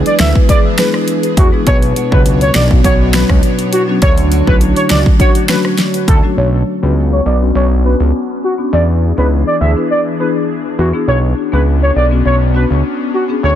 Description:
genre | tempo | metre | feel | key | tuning
dancehall | 102 BPM | 4/4 | straight | B dorian | A4 = 443 Hz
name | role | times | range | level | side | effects
airy breathy pad | sustained chords | 0.0-13.6 s | E3 to C#5 | -21 LUFS | equal | chorus, sidechain pumping, low-pass filter
nylon-string guitar | arpeggios | 0.0-6.9 s | B2 to C#5 | -20 LUFS | right 1 dB | none
fat analog bass | bass | 0.0-13.6 s | B1 to E2 | -13 LUFS | equal | none
warm velvety synth lead | melody | 0.1-13.5 s | F#4 to E5 | -17 LUFS | equal | chorus, low-pass filter, ping-pong delay
pop drum kit | drums | 0.1-6.2 s | finger snaps, hi-hat, kick drum, rim click, snare drum | -12 LUFS | equal | none
marimba with medium mallets | accompaniment | 0.2-13.4 s | F#3 to B4 | -18 LUFS | left 4 dB | sidechain pumping, low-pass filter
room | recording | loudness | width
little or no reverb | dense, heavily limited modern master | -10 LUFS | side -10 dB against mid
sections
0.0-6.4 A section; 6.4-13.6 B section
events
filter sweep 6.4-13.6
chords
0.0 E7; 1.7 Bmadd9; 8.7 E7; 11.1 Bmadd9

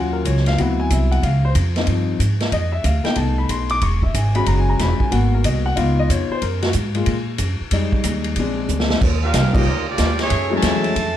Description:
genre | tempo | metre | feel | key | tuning
jazz, big band swing | 185 BPM | 4/4 | swing 64% on 8ths | unclear | A4 = 437 Hz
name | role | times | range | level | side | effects
warm concert grand piano | accompaniment | 0.0-10.9 s | F3 to D6 | -22 LUFS | left 3 dB | none
upright bass | bass | 0.0-11.2 s | E1 to Bb2 | -19 LUFS | right 1 dB | none
swinging big-band drum kit | drums | 0.3-11.1 s | crash cymbal, hi-hat, kick drum, ride cymbal, snare drum | -23 LUFS | equal | none
clear trumpet section | melody | 9.2-11.2 s | A3 to A5 | -23 LUFS | right 2 dB | none
muted trombone section | second line | 9.2-11.2 s | Db3 to F4 | -28 LUFS | right 2 dB | none
room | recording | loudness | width
light reverb | none | -16 LUFS | side -11 dB against mid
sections
0.0-9.0 A section; 9.0-11.2 B section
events
grand piano solo 0.0-9.0; drum fill 8.7-9.0; band accent 9.5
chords
0.0 Ebm7; 0.6 D13; 1.2 Dbmaj7; 2.5 F7#11; 3.8 E6; 5.1 Abm7; 5.8 Db7; 6.4 Gbmaj7; 7.7 Fm7; 8.4 Bb7; 9.0 Ebmaj9; 10.3 Gbm9

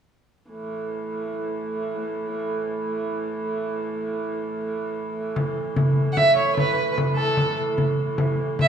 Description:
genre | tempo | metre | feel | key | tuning
medieval dance | 99 BPM (dotted quarters) | 6/8 | straight | unclear | A4 = 440 Hz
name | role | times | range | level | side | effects
dark hurdy-gurdy | drone | 0.5-8.7 s | A2 to E3 | -27 LUFS | right 2 dB | none
frame drum | percussion | 5.4-8.7 s | none | -23 LUFS | left 1 dB | none
dark fiddle | melody | 6.1-8.7 s | A4 to F#5 | -20 LUFS | right 2 dB | none
room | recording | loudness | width
wet scoring stage reverb, RT60 1.6 s | none | -22 LUFS | side -8 dB against mid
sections
0.5-5.4 A section; 5.4-8.7 B section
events
none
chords
none

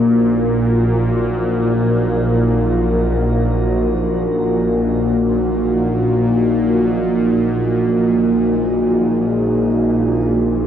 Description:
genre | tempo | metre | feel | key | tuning
dark ambient drone | free time | none | none | unclear | A4 = 438 Hz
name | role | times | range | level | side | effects
deep dark ambient pad | sustained chords | 0.0-10.7 s | Bb3 to Bb4 | -18 LUFS | right 1 dB | chorus, built-in reverb, shimmer reverb
bowed-like drone | drone | 0.0-10.7 s | Bb1 to Bb2 | -16 LUFS | equal | built-in reverb, phaser
room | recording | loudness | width
wet cathedral reverb, RT60 6.5 s | worn, warbling old tape, cassette tape, warbly pitch drift | -14 LUFS | side -9 dB against mid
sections
0.0-10.7 A section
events
none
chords
0.0 Gbadd9/Bb

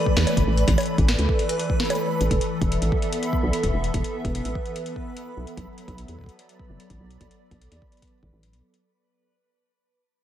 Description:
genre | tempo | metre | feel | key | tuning
IDM | 147 BPM | 4/4 | straight | B minor | A4 = 440 Hz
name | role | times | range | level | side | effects
hollow soft pad | sustained chords | 0.0-8.8 s | E3 to E5 | -28 LUFS | right 1 dB | ensemble chorus, shimmer reverb
backwards swelling texture | texture | 0.0-8.8 s | B4 | -32 LUFS | equal | built-in reverb, shimmer reverb
electronic kick drum | drums | 0.1-8.3 s | none | -26 LUFS | equal | none
rubbery square bass | bass | 0.2-8.6 s | D1 to E2 | -24 LUFS | equal | none
electro analog drum machine | drums | 0.2-8.8 s | bongos, hi-hat, snare drum | -29 LUFS | equal | tape echo
room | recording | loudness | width
light reverb | none | -21 LUFS | side -11 dB against mid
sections
0.0-8.8 A section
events
fade-out 0.0-8.8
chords
0.0 Asus4; 2.3 Esus4; 5.6 Bm7

